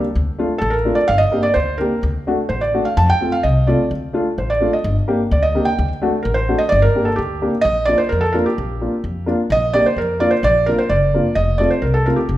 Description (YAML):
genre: klezmer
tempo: 129 BPM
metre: 2/4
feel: straight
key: G minor, Bb major from 7.6 s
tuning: A4 = 440 Hz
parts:
  - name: dark upright piano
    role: accompaniment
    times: 0.0-12.2 s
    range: A3 to G4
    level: -21 LUFS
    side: left 1 dB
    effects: none
  - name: upright bass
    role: bass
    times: 0.2-12.4 s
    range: F1 to F2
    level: -20 LUFS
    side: left 1 dB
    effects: none
  - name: felt-muted upright piano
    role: melody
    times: 0.6-12.4 s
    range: G4 to A5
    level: -18 LUFS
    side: right 2 dB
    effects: none
room: moderate recital hall reverb, RT60 1.4 s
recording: minimal, uncompressed stereo recording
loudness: -15 LUFS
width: side -14 dB against mid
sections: 0.2-7.6 A section; 7.6-12.4 B section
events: none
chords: 0.2 Dm; 1.1 Gm; 2.0 D; 3.0 F; 3.9 Dm; 4.8 Gm; 5.8 D; 6.7 Gm; 7.6 Bb; 11.4 F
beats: | 0.16 0.63 | 1.10 1.57 | 2.04 2.51 | 2.98 3.44 | 3.91 4.38 | 4.85 5.32 | 5.78 6.25 | 6.71 7.18 | 7.65 8.11 | 8.58 9.04 | 9.51 9.97 | 10.43 10.90 | 11.36 11.82 | 12.29